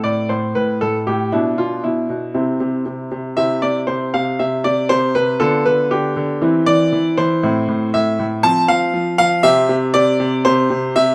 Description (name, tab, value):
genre	classical-period piano sonatina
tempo	118 BPM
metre	4/4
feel	rubato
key	C major from 7.4 s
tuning	A4 = 439 Hz
part	bright baby grand piano	solo	0.0-11.1 s	A2 to A5	-17 LUFS	equal	none
room	moderate stone room reverb, RT60 1.3 s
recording	none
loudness	-17 LUFS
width	mono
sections	0.0-11.1 A section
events	none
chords	0.0 Am; 1.3 E5/B; 2.3 C; 5.4 G7/D; 6.4 C/E; 7.4 Am; 8.4 F5; 9.4 C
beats	0.29 0.80 | 1.31 1.83 2.34 2.86 | 3.37 3.89 4.40 4.91 | 5.41 5.91 6.42 6.92 | 7.43 7.93 8.44 8.94 | 9.44 9.94 10.45 10.96